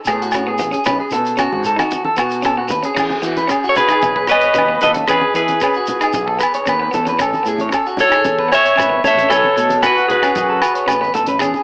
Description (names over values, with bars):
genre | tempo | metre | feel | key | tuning
highlife guitar band | 114 BPM | 4/4 | straight | E major | A4 = 440 Hz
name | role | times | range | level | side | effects
semi-hollow electric guitar | accompaniment | 0.1-11.6 s | A3 to D#4 | -25 LUFS | equal | cassette tape
electric guitar at the edge of break-up | arpeggios | 0.1-11.6 s | F#4 to C#5 | -18 LUFS | equal | cassette tape
fretless electric bass | bass | 0.1-11.5 s | G#1 to E3 | -25 LUFS | equal | none
damped 70s drum kit | drums | 0.1-11.5 s | crash cymbal, hi-hat, kick drum, rim click | -26 LUFS | equal | cassette tape
agogo bells | percussion | 0.1-11.5 s | none | -22 LUFS | equal | none
shekere | percussion | 0.1-11.6 s | none | -32 LUFS | equal | none
congas | percussion | 0.6-11.6 s | none | -28 LUFS | equal | none
clean electric guitar | melody | 3.7-11.1 s | F#4 to E5 | -15 LUFS | equal | cassette tape
warm trumpet | second line | 3.7-11.1 s | F#4 to C#5 | -20 LUFS | equal | cassette tape
room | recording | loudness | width
moderate spring reverb, RT60 2.6 s | home recording on cassette, AM radio sound | -13 LUFS | side -35 dB against mid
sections
0.0-3.0 A section; 3.0-11.6 B section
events
none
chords
0.0 Amaj7; 0.9 B5; 3.0 Emaj7; 7.2 Amaj7; 9.3 B5